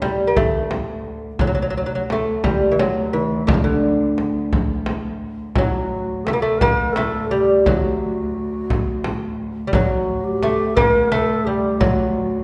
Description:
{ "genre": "Persian modal ensemble", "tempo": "58 BPM (dotted quarters)", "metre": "6/8", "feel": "straight", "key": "D dastgah chahargah", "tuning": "A4 = 440 Hz", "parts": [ { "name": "lute", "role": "melody", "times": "0.0-12.4 s", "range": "C#3 to Bb3+45c", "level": "-22 LUFS", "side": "equal", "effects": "none" }, { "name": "muted cello", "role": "drone", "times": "0.0-12.4 s", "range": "D2", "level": "-29 LUFS", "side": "equal", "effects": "none" }, { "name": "frame drum", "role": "percussion", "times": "0.0-12.0 s", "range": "none", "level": "-25 LUFS", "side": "equal", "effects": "none" }, { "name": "breathy low ney", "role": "second line", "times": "5.6-12.4 s", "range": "Eb4+46c to B4+44c", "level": "-26 LUFS", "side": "equal", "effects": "none" } ], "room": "wet recital hall reverb, RT60 1.6 s", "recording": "recorded in a church or concert hall, nothing above 10.6 kHz", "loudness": "-20 LUFS", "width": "mono", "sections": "0.0-5.6 A section; 5.6-12.4 A section", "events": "none", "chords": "none", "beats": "0.37 | 1.41 2.45 | 3.49 4.53 | 5.57 6.62 | 7.66 8.70 | 9.74 10.78 | 11.82" }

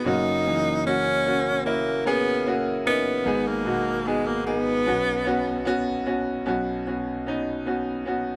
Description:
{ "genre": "pop", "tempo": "75 BPM", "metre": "4/4", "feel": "straight", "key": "unclear", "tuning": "A4 = 439 Hz", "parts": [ { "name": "clear tenor saxophone", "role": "melody", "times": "0.0-6.0 s", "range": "G#3 to D#4", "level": "-27 LUFS", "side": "equal", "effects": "none" }, { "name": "clear concert grand piano", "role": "accompaniment", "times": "0.0-8.4 s", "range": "F#1 to A#4", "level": "-27 LUFS", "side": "equal", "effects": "none" } ], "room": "moderate plate reverb, RT60 2.7 s", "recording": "none", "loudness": "-25 LUFS", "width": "mono", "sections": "0.0-6.5 A section; 6.5-8.4 B section", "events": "none", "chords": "0.1 F#; 3.3 G#m; 4.9 Bsus2", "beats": "| 0.06 0.86 1.66 2.46 | 3.26 4.06 4.86 5.66 | 6.46 7.26 8.06" }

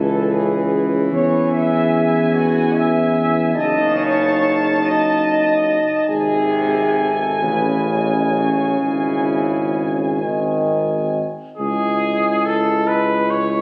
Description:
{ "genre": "classical, hymn-like piece for brass band", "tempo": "42-50 BPM (dotted quarters)", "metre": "6/8", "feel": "rubato", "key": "C# minor", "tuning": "A4 = 439 Hz", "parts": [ { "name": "warm cornet", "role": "melody", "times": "0.0-13.6 s", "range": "G#4 to A5", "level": "-25 LUFS", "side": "equal", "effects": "none" }, { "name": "mellow French horn section", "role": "second line", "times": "0.0-13.6 s", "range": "E4 to E5", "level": "-24 LUFS", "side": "equal", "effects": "none" }, { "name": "brilliant trombone", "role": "accompaniment", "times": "0.0-13.6 s", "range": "B#2 to G#3", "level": "-27 LUFS", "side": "equal", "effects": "none" }, { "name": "mellow euphonium", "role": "accompaniment", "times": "0.0-13.6 s", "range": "B#3 to E4", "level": "-26 LUFS", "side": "equal", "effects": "none" }, { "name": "clear tuba", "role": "bass", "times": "0.0-13.6 s", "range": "F#1 to E2", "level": "-23 LUFS", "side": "equal", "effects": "none" } ], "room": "moderate scoring stage reverb, RT60 1.9 s", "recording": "recorded on a phone in the room, studio reverb, compression", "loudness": "-18 LUFS", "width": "mono", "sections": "0.0-11.6 A section; 11.6-13.6 B section", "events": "none", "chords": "0.0 C#m; 1.1 C#m/E; 3.6 D#m7b5/F#; 6.1 G#; 7.4 Amaj7; 8.8 C#m/G#; 10.2 G#; 11.6 C#m", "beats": "| 1.11 2.33 | 3.56 4.82 | 6.09 7.42 | 8.81 10.21 | 11.58 12.88" }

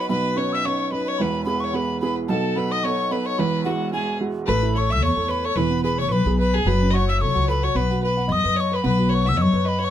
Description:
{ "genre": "celtic folk, Celtic reel", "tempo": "220 BPM", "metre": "4/4", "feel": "swing 56% on 8ths", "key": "E major", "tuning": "A4 = 441 Hz", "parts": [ { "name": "hollow wooden whistle", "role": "melody", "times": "0.0-9.9 s", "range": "F#5 to E6", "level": "-26 LUFS", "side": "right 1 dB", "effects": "none" }, { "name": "rich fiddle", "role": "second line", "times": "0.0-9.9 s", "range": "F#4 to E5", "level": "-26 LUFS", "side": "left 5 dB", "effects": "none" }, { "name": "warm upright piano", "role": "accompaniment", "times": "0.0-9.9 s", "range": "E1 to F#5", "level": "-25 LUFS", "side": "right 4 dB", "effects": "none" }, { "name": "upright bass", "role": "bass", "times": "4.5-9.9 s", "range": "E1 to F#2", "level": "-21 LUFS", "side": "left 1 dB", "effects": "none" } ], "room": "little or no reverb", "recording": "close, detailed microphones", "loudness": "-19 LUFS", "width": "side -11 dB against mid", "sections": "0.0-4.5 A section; 4.5-9.9 A section", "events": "none", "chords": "0.1 Badd9; 1.2 E; 2.3 B7; 3.4 Eadd9; 4.5 Aadd9; 5.6 E6; 6.7 F#m; 7.7 B", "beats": "| 0.10 0.37 0.64 0.92 | 1.19 1.46 1.74 2.01 | 2.28 2.56 2.83 3.10 | 3.38 3.65 3.92 4.20 | 4.47 4.74 5.02 5.29 | 5.56 5.83 6.11 6.38 | 6.65 6.92 7.20 7.47 | 7.74 8.02 8.29 8.56 | 8.83 9.11 9.38 9.65" }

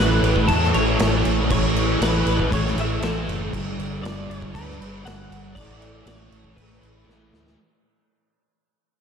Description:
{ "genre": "rock, shoegaze and dream pop", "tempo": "118 BPM", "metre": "4/4", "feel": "straight", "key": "A mixolydian", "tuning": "A4 = 440 Hz", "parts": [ { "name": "twelve-string electric guitar", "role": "melody", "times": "0.0-7.3 s", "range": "A4 to F#5", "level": "-27 LUFS", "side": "left 2 dB", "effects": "ensemble chorus, analog delay" }, { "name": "fuzz guitar", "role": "riff", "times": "0.0-7.6 s", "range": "G2 to A3", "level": "-24 LUFS", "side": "equal", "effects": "distortion, ensemble chorus" }, { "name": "vintage muted fingered electric bass", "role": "bass", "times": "0.0-7.5 s", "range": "F#1 to E2", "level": "-26 LUFS", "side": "equal", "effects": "none" }, { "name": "loose indie drum kit", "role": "drums", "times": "0.2-7.6 s", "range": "crash cymbal, kick drum, snare drum", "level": "-25 LUFS", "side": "equal", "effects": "none" } ], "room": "moderate church reverb, RT60 2.9 s", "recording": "dreamy mix soaked in reverb", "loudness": "-19 LUFS", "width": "side -7 dB against mid", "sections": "0.0-7.6 A section", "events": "fade-out 0.0-7.6; drum fill 7.1-7.6", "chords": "0.0 A; 3.5 G; 5.6 A", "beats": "0.48 0.99 | 1.50 2.01 2.52 3.02 | 3.53 4.04 4.54 5.05 | 5.56 6.06 6.57 7.07" }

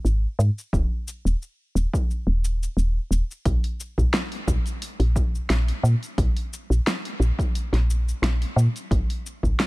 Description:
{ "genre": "organic downtempo", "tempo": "88 BPM", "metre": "4/4", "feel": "swing 54% on 16ths", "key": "unclear", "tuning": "A4 = 441 Hz", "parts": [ { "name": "woody FM bass", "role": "bass", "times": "0.0-9.5 s", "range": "Eb1 to Bb2", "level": "-21 LUFS", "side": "equal", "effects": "sidechain pumping" }, { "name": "deep house drum kit", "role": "drums", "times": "0.1-9.7 s", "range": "cabasa, hi-hat, snare drum", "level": "-29 LUFS", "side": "equal", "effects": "small room ambience" }, { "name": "electronic kick drum", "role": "drums", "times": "0.7-9.6 s", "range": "none", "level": "-24 LUFS", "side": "equal", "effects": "small room ambience" } ], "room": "digital ambience", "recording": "none", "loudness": "-22 LUFS", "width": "side -22 dB against mid", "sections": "0.0-9.7 A section", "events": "none", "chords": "none", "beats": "0.05 | 0.73 1.41 2.09 2.77 | 3.46 4.14 4.82 5.50 | 6.18 6.87 7.55 8.23 | 8.91 9.59" }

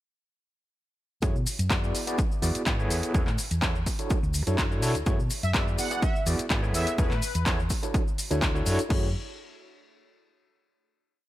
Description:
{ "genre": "filtered disco house", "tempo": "125 BPM", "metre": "4/4", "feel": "straight", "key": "F# minor", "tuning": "A4 = 440 Hz", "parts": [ { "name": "overdriven tine electric piano", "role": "accompaniment", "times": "1.2-9.1 s", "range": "A3 to D5", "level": "-32 LUFS", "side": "equal", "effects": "medium tremolo, phaser, sidechain pumping" }, { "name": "hollow-body short-scale fingered electric bass", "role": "bass", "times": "1.2-9.1 s", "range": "D2 to B2", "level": "-29 LUFS", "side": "equal", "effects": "sidechain pumping" }, { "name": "electronic kick drum", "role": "drums", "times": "1.2-9.0 s", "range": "none", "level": "-28 LUFS", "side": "equal", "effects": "overdrive" }, { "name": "house drum kit", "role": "drums", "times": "1.2-9.0 s", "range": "crash cymbal, handclaps, hi-hat, shaker", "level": "-32 LUFS", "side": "equal", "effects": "overdrive, sidechain pumping on hats, sidechain pumping on perc, sidechain pumping on cymbals" }, { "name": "maracas", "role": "percussion", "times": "1.2-8.9 s", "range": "none", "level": "-40 LUFS", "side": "left 6 dB", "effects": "sidechain pumping on perc" }, { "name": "analog synth brass", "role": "melody", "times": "5.4-7.5 s", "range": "B4 to F#5", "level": "-33 LUFS", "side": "equal", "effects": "chorus, sidechain pumping" } ], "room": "little or no reverb", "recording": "none", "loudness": "-24 LUFS", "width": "side -15 dB against mid", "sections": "1.2-8.9 drop; 8.9-10.8 final chord", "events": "drop 1.2-8.9", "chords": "1.2 F#m7; 1.9 E7; 2.9 Amaj7/E; 3.9 Dmaj7; 5.1 F#m7; 5.8 E7; 6.7 Amaj7/E; 7.7 Dmaj7; 8.9 F#m7", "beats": "| 1.23 1.71 2.19 2.67 | 3.15 3.62 4.11 4.58 | 5.07 5.54 6.03 6.50 | 6.99 7.46 7.95 8.43 | 8.90" }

